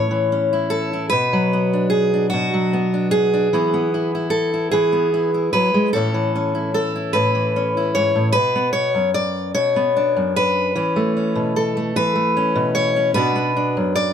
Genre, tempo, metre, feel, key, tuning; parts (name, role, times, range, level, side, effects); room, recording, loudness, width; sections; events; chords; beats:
folk, solo fingerstyle acoustic guitar; 50 BPM (dotted quarters); 6/8; straight; A4 = 442 Hz
fingerpicked steel-string acoustic guitar; solo; 0.0-14.1 s; F#2 to D5; -17 LUFS; equal
moderate small room reverb, RT60 0.5 s; -17 LUFS; side -8 dB against mid
0.0-8.3 A section; 8.3-14.1 B section
0.0 A; 1.1 Bm; 3.5 E; 5.9 A; 8.3 Bm; 10.8 Esus4; 13.2 Bm
| 1.12 2.32 | 3.51 4.71 | 5.92 7.13 | 8.34 9.55 | 10.76 11.96 | 13.16